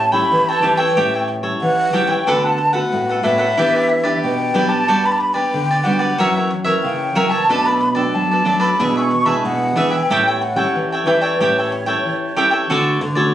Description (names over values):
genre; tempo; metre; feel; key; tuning
samba; 92 BPM; 4/4; straight; unclear; A4 = 440 Hz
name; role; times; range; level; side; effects
breathy mellow silver concert flute; melody; 0.0-12.4 s; C#5 to C#6; -18 LUFS; equal; plate reverb
nylon-string guitar; accompaniment; 0.0-13.3 s; F#2 to G4; -24 LUFS; left 2 dB; none
nylon-string guitar; bass; 0.0-13.3 s; A2 to G3; -21 LUFS; right 1 dB; none
cavaquinho; accompaniment; 0.1-13.3 s; D4 to G5; -20 LUFS; right 2 dB; none
room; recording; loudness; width
moderate studio reverb, RT60 0.9 s; recorded on a phone in the room, club reverb, compression; -14 LUFS; side -12 dB against mid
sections
0.0-12.7 A section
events
none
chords
0.0 A7; 2.3 D6; 3.6 Em7; 4.9 Gmaj7; 6.2 F#7; 7.5 Bm7; 8.8 E7/B; 10.1 A7; 12.7 Dmaj7